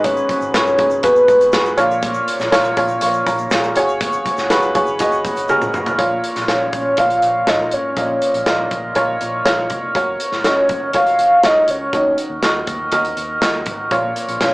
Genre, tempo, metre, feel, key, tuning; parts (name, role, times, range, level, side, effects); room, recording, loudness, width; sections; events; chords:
piano-driven pop; 121 BPM; 4/4; straight; A4 = 440 Hz
hollow clarinet-like synth lead; melody; 0.0-1.8, 6.5-14.5 s; Cb5 to F5; -14 LUFS; equal; chorus
felt-muted upright piano; accompaniment; 0.0-14.5 s; Ab2 to Db6; -17 LUFS; equal
vintage muted fingered electric bass; bass; 0.0-14.5 s; F1 to Eb2; -34 LUFS; equal
modern studio drum kit; drums; 0.0-14.5 s; hi-hat, kick drum, snare drum, toms; -22 LUFS; equal
egg shaker; percussion; 0.0-6.0 s; -42 LUFS; left 2 dB
moderate small room ambience, RT60 0.5 s; rough rehearsal-room recording, warm saturation, small speaker sound; -14 LUFS; side -23 dB against mid
0.0-6.0 A section; 6.0-14.5 B section
drum fill 5.5-6.0
0.0 Abm7; 1.8 Bbm; 3.8 Gbsus2; 6.0 Bbm; 9.9 Gb; 11.9 Ebm; 13.9 Bbm